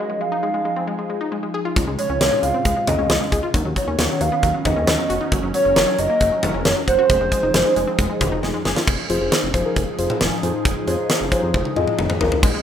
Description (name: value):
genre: synth-pop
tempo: 135 BPM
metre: 4/4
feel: straight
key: unclear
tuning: A4 = 440 Hz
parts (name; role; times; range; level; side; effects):
- hollow clarinet-like synth lead; melody; 0.0-8.4 s; C5 to F5; -20 LUFS; right 2 dB; chorus, tape echo
- phased analog pad; sustained chords; 0.0-12.6 s; C3 to Bb4; -27 LUFS; left 1 dB; phaser, chorus
- wide unison pluck; arpeggios; 0.0-8.8, 12.4-12.6 s; F#3 to Gb5; -27 LUFS; left 3 dB; tape echo
- fat analog bass; bass; 1.8-12.5 s; F1 to F2; -25 LUFS; equal; none
- huge arena drum kit; drums; 1.8-12.5 s; cowbell, crash cymbal, hi-hat, kick drum, snare drum, toms; -21 LUFS; equal; none
- muted felt-like synth keys; accompaniment; 9.1-12.4 s; F4 to Eb5; -23 LUFS; left 2 dB; chorus
room: moderate plate reverb, RT60 1.1 s, studio reverb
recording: rough home demo mix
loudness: -17 LUFS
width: side -9 dB against mid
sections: 0.0-8.9 A section; 8.9-12.4 B section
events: drum fill 8.4-8.9, 11.5-12.4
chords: 0.0 Fm7; 1.8 Dbmaj7; 3.5 Badd9/D#; 5.3 Gb; 7.1 Fm7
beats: 0.43 0.88 1.32 | 1.76 2.21 2.65 3.10 | 3.54 3.99 4.43 4.88 | 5.32 5.76 6.21 6.65 | 7.10 7.54 7.99 8.43 | 8.88 9.32 9.76 10.21 | 10.65 11.10 11.54 11.99 | 12.43